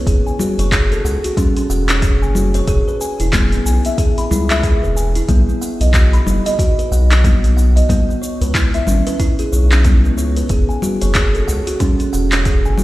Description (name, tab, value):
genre	organic downtempo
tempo	92 BPM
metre	4/4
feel	swing 60% on 16ths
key	unclear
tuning	A4 = 440 Hz
part	kalimba	arpeggios	0.0-12.8 s	B3 to B5	-20 LUFS	equal	tape echo
part	round analog bass	bass	0.1-12.8 s	E1 to C#2	-15 LUFS	equal	sidechain pumping
part	afro-pop drum kit	drums	0.1-12.8 s	cabasa, congas, handclaps, hi-hat	-21 LUFS	left 2 dB	none
part	electronic kick drum	drums	0.1-12.6 s	none	-16 LUFS	equal	none
room	light reverb, digital ambience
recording	played on a big sound system in a bare room, stone room reverb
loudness	-13 LUFS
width	side -17 dB against mid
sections	0.0-12.8 A section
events	none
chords	0.1 F#sus2; 2.7 E; 5.3 B; 7.9 C#m7; 10.5 F#sus2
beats	| 0.07 0.72 1.37 2.03 | 2.68 3.33 3.98 4.63 | 5.29 5.94 6.59 7.24 | 7.89 8.55 9.20 9.85 | 10.50 11.16 11.81 12.46